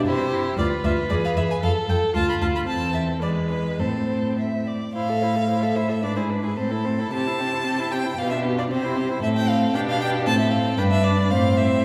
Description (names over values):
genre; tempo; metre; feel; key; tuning
quick classical-period movement for string quartet; 113 BPM; 2/4; rubato; A minor; A4 = 440 Hz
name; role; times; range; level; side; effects
rich violin; second line; 0.0-11.8 s; F4 to E5; -31 LUFS; equal; none
rich viola; accompaniment; 0.0-11.8 s; G#3 to A4; -29 LUFS; equal; none
clear violin; melody; 0.1-11.8 s; A4 to B5; -30 LUFS; equal; none
rich cello; bass; 0.1-11.8 s; D2 to C3; -26 LUFS; equal; none
room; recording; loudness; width
wet recital hall reverb, RT60 1.5 s; heard from further back in the room; -23 LUFS; mono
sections
0.0-5.0 A section; 5.0-11.8 A section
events
none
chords
0.1 C; 0.6 Bdim; 1.1 E; 1.6 F; 2.1 Dm; 2.7 Am/E; 3.2 E; 3.8 Am; 6.0 E7/G#; 6.6 Am; 7.1 C; 8.2 G7/B; 8.7 C; 9.2 Am; 9.7 G/B; 10.3 F/A; 10.8 G; 11.3 Am